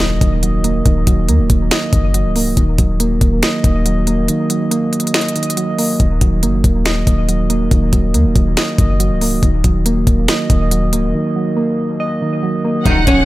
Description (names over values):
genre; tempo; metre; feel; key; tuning
hip hop, trap; 140 BPM; 4/4; half-time; Eb minor; A4 = 438 Hz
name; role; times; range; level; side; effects
soft electric-piano-like synth keys; accompaniment; 0.0-13.2 s; Eb3 to Eb5; -17 LUFS; right 2 dB; chorus, dub echo
clean 808-style bass; bass; 0.0-13.2 s; Db1 to Eb2; -16 LUFS; equal; none
trap drum kit; drums; 0.0-13.2 s; finger snaps, hi-hat, kick drum, snare drum; -16 LUFS; equal; none
impact; sound effects; 0.0-0.9, 12.9-13.2 s; none; -26 LUFS; equal; none
nylon-string guitar; melody; 12.9-13.2 s; Db4 to Eb4; -14 LUFS; equal; none
rich studio violin section; second line; 12.9-13.2 s; Gb5; -17 LUFS; right 1 dB; none
warm brass ensemble; stabs; 12.9-13.0 s; Bb1 to Eb3; -24 LUFS; left 7 dB; dub echo
room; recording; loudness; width
little or no reverb; echo-heavy mix; -13 LUFS; side -17 dB against mid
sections
0.0-12.9 A section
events
impact 0.0-0.9, 12.9-13.2; break 4.3-6.0, 11.1-12.9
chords
0.0 Ebm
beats
0.00 0.43 | 0.86 1.28 1.71 2.14 | 2.57 3.00 3.43 3.86 | 4.29 4.71 5.14 5.57 | 6.00 6.43 6.86 7.29 | 7.71 8.14 8.57 9.00 | 9.43 9.86 10.29 10.71 | 11.14 11.57 12.00 12.43 | 12.86